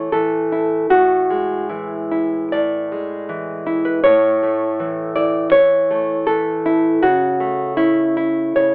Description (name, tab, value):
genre	romantic piece for solo classical guitar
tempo	70-82 BPM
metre	4/4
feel	rubato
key	A major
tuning	A4 = 439 Hz
part	nylon-string guitar	solo	0.0-8.7 s	A2 to D5	-18 LUFS	equal	none
room	light reverb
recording	rough home demo mix, telephone sound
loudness	-18 LUFS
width	mono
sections	0.0-8.7 A section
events	none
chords	0.0 A5; 0.9 E7/A; 4.1 A; 7.0 A/C#